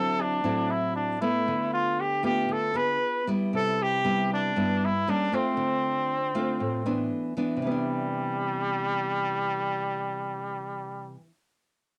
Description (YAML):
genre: bossa nova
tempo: 117 BPM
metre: 4/4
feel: straight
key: C major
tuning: A4 = 441 Hz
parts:
  - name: warm trumpet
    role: melody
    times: 0.0-11.2 s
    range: G3 to B4-20c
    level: -30 LUFS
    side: equal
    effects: none
  - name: nylon-string guitar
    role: accompaniment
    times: 0.0-11.3 s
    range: G2 to Ab4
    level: -31 LUFS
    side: equal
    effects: cassette tape
room: moderate booth ambience, RT60 0.3 s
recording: home recording on cassette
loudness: -27 LUFS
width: mono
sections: 0.0-7.6 A section; 7.6-11.7 B section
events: none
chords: 0.0 D9; 1.5 Dm6; 3.0 G7b9; 3.5 Cmaj7; 5.1 A7b9; 5.6 Dm7; 7.1 Bmadd11/E